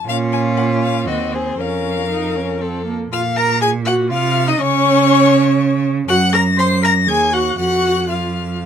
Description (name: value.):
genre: quick classical-period movement for string quartet.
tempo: 120 BPM.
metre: 3/4.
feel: straight.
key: Bb minor.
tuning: A4 = 440 Hz.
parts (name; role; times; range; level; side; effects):
rich violin; melody; 0.0-8.6 s; C5 to C7; -21 LUFS; left 8 dB; none.
warm violin; second line; 0.1-8.6 s; F4 to C6; -21 LUFS; left 4 dB; none.
warm viola; accompaniment; 0.1-8.6 s; Bb3 to C5; -20 LUFS; right 2 dB; none.
clear cello; bass; 0.1-8.7 s; Eb2 to Db3; -18 LUFS; right 5 dB; none.
room: light reverb.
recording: close, detailed microphones.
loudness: -14 LUFS.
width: side -8 dB against mid.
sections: 0.0-3.1 A section; 3.1-8.7 B section.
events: none.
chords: 0.1 Bbm; 1.1 Cdim/Eb; 1.6 Bbm/F; 2.6 F; 3.1 Gbmaj7/Bb; 4.1 F5/C; 4.6 N.C.; 6.1 Gb; 7.1 Ebm; 7.6 N.C..